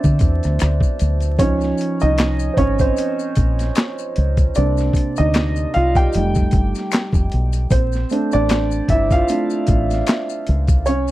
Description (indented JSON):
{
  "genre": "R&B, neo-soul",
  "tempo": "76 BPM",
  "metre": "4/4",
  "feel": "swing 57% on 16ths",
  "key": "unclear",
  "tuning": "A4 = 437 Hz",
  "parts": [
    { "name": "dark baby grand piano", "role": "accompaniment", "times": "0.0-11.1 s", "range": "C3 to G5", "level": "-20 LUFS", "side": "right 2 dB", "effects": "none" },
    { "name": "boom bap sampler-style drum kit", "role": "drums", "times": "0.0-11.1 s", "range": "handclaps, hi-hat, kick drum, rim click, snare drum", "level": "-18 LUFS", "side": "equal", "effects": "none" },
    { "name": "maracas and finger snaps", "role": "percussion", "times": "0.0-11.1 s", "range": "none", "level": "-34 LUFS", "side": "left 17 dB", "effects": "none" },
    { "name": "deep dub fingered electric bass", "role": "bass", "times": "0.1-11.1 s", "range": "F1 to D3", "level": "-18 LUFS", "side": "equal", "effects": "none" }
  ],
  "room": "little or no reverb",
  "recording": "dry, close 1970s-style studio recording, vinyl crackle",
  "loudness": "-15 LUFS",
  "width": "side -16 dB against mid",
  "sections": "0.0-11.1 A section",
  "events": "grand piano solo 0.0-11.1",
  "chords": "0.0 D13; 1.4 Dbmaj9; 4.5 Cm7; 6.1 F9; 7.7 Bbmaj7 (rootless)",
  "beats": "0.60 | 1.39 2.17 2.96 3.75 | 4.54 5.33 6.12 6.91 | 7.70 8.49 9.28 10.07 | 10.86"
}